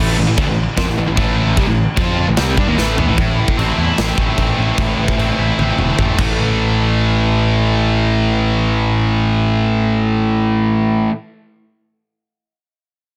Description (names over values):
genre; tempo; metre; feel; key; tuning
heavy metal; 149 BPM; 4/4; straight; A minor; A4 = 440 Hz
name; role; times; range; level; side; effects
fuzz guitar; riff; 0.0-3.2 s; A2 to F4; -24 LUFS; equal; distortion
tight distorted guitar; riff; 0.0-11.1 s; A2 to F4; -22 LUFS; equal; distortion
tight distorted guitar; riff; 0.0-11.1 s; A2 to F4; -22 LUFS; equal; distortion
fuzz picked electric bass; bass; 0.0-11.1 s; E1 to G2; -20 LUFS; equal; overdrive
big rock drum kit; drums; 0.4-6.3 s; china cymbal, crash cymbal, kick drum, snare drum, toms; -21 LUFS; equal; soft clipping on snare
room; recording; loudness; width
little or no reverb; dense, heavily limited modern master; -16 LUFS; mono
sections
0.0-3.2 A section; 3.2-6.4 B section; 6.4-9.6 C section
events
drum fill 2.8-3.2, 5.6-6.4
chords
0.0 Am; 6.2 A5